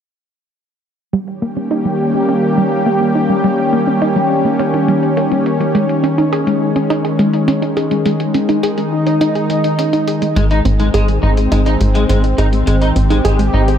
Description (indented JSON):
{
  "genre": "synthwave",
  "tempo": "104 BPM",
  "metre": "4/4",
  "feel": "straight",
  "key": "unclear",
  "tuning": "A4 = 440 Hz",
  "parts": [
    { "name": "lush unison pad", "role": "sustained chords", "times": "1.4-13.8 s", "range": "Eb3 to G4", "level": "-15 LUFS", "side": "left 1 dB", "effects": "chorus" },
    { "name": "wide unison pluck", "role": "arpeggios", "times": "1.1-13.8 s", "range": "G3 to Ab4", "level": "-18 LUFS", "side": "right 1 dB", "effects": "ping-pong delay" },
    { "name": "electronic hi-hat", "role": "drums", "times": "1.1-13.8 s", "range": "none", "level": "-31 LUFS", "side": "equal", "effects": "low-pass filter on hats, small room ambience" },
    { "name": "electric guitar at the edge of break-up", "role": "riff", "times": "10.4-13.6 s", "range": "Ab3 to Eb4", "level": "-20 LUFS", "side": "left 2 dB", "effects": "ensemble chorus, ping-pong delay" },
    { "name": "tight sequencer bass", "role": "bass", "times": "10.4-13.8 s", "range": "Ab1", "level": "-13 LUFS", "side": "equal", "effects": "none" }
  ],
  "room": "moderate lush hall reverb, RT60 2.0 s",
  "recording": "none",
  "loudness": "-12 LUFS",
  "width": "side -8 dB against mid",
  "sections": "1.1-13.8 A section",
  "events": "filter sweep on drum 1.1-13.8; filter sweep on synth arpeggio sound 1.1-13.8",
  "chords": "1.1 Eb7; 5.7 Dbsus2; 10.4 Ab",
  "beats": "| 1.13 1.71 2.29 2.86 | 3.44 4.02 4.59 5.17 | 5.75 6.33 6.90 7.48 | 8.06 8.63 9.21 9.79 | 10.36 10.94 11.52 12.10 | 12.67 13.25"
}